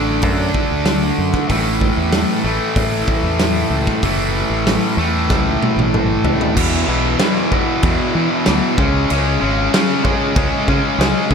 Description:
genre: classic rock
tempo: 95 BPM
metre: 4/4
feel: straight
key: E mixolydian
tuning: A4 = 439 Hz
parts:
  - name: distorted electric guitar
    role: riff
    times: 0.0-11.3 s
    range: E2 to D4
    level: -17 LUFS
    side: equal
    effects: overdrive
  - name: modern bright fingered electric bass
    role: bass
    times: 0.0-11.3 s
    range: F#1 to E3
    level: -20 LUFS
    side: equal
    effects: none
  - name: big rock drum kit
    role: drums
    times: 0.2-11.3 s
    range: crash cymbal, hi-hat, kick drum, snare drum, toms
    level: -19 LUFS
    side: equal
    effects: none
room: moderate lush hall reverb, RT60 2.1 s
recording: big arena sound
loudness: -14 LUFS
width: side -6 dB against mid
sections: 0.0-6.6 A section; 6.6-11.3 B section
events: drum fill 5.3-6.6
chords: 0.0 D; 1.5 A5; 6.6 E5; 8.8 C#5

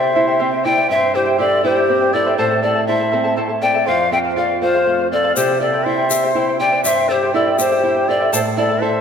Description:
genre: andean folk, Andean ensemble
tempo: 81 BPM (dotted quarters)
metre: 6/8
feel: straight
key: unclear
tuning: A4 = 440 Hz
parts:
  - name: polished pan flute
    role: melody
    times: 0.0-9.0 s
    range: C5 to G5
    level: -17 LUFS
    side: left 1 dB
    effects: none
  - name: breathy large quena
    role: second line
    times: 0.0-9.0 s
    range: F4 to E5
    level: -20 LUFS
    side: left 3 dB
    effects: none
  - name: charango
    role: accompaniment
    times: 0.0-9.0 s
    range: E4 to A5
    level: -22 LUFS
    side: right 1 dB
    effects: none
  - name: nylon-string guitar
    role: accompaniment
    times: 0.0-9.0 s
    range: F2 to A4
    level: -23 LUFS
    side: right 4 dB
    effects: none
  - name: tube shaker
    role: percussion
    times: 5.4-8.4 s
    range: none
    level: -24 LUFS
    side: left 7 dB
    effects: none
room: wet concert hall reverb, RT60 2.4 s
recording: none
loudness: -14 LUFS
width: side -7 dB against mid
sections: 0.0-9.0 A section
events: none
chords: 0.0 C; 2.4 Am; 3.9 F; 5.4 C; 8.3 Am

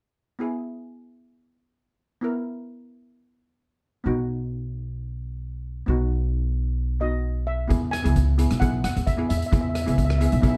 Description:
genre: calypso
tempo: 132 BPM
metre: 4/4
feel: straight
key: unclear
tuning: A4 = 440 Hz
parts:
  - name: steel pan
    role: accompaniment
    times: 0.4-10.6 s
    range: B3 to A#4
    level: -31 LUFS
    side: equal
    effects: none
  - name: upright bass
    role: bass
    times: 4.1-10.6 s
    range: B1 to E2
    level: -26 LUFS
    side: equal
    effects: none
  - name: steel pan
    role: melody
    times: 7.0-10.6 s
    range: D#5 to G#5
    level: -33 LUFS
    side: equal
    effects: slapback echo
  - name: street-band drum kit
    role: drums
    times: 7.7-10.5 s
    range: hi-hat, kick drum, rim click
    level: -28 LUFS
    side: equal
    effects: none
room: light reverb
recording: dark, warm production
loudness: -25 LUFS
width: mono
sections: 0.4-7.7 A section; 7.7-10.6 B section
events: none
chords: 0.4 E; 4.1 B; 7.7 E

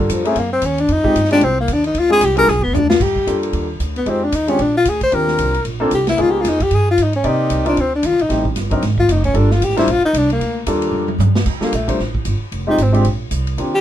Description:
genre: jazz, small-group swing and bop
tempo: 227 BPM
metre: 4/4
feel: swing 59% on 8ths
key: G minor from 3.0 s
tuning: A4 = 440 Hz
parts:
  - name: breathy tenor saxophone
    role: melody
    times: 0.0-13.8 s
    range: D3 to C5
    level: -16 LUFS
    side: left 2 dB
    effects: none
  - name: warm concert grand piano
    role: accompaniment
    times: 0.0-13.7 s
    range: F#3 to D5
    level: -20 LUFS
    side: left 1 dB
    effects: none
  - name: upright bass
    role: bass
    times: 0.0-13.8 s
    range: F1 to C3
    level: -20 LUFS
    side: right 1 dB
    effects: none
  - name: swinging big-band drum kit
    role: drums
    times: 0.1-13.7 s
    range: crash cymbal, hi-hat, kick drum, ride cymbal, snare drum, toms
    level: -24 LUFS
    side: right 1 dB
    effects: none
room: light reverb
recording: minimal, uncompressed stereo recording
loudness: -14 LUFS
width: side -11 dB against mid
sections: 0.0-3.0 A section; 3.0-11.5 A section; 11.5-13.8 A section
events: tenor saxophone solo 0.0-11.5, 11.5-13.8; drum fill 2.5-3.0, 10.9-11.5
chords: 0.4 Ebm; 0.9 Fm9; 1.9 Dm7b5; 2.5 G7; 3.0 Gm9; 4.1 Fm7; 4.6 Bb; 5.1 Ebmaj13; 6.2 C#13; 7.2 Cm9; 8.3 Am7b5; 8.8 Fm7; 9.3 Gm9; 12.5 Fm7; 13.0 Bbsus2

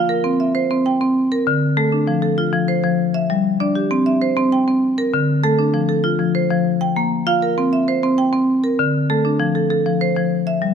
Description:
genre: southern african traditional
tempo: 131 BPM (dotted quarters)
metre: 12/8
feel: straight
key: F major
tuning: A4 = 439 Hz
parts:
  - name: marimba with medium hard mallets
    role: solo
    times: 0.0-10.7 s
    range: D3 to G5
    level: -16 LUFS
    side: equal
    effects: none
room: moderate recital hall reverb, RT60 1.7 s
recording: close, detailed microphones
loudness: -16 LUFS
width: side -7 dB against mid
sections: 0.0-9.4 A section; 9.4-10.7 B section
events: none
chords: 0.2 C; 1.2 D5; 2.1 F; 3.0 G5; 3.9 C; 4.8 D5; 5.7 F; 6.7 Bb5; 7.6 C; 8.5 D5; 9.4 F

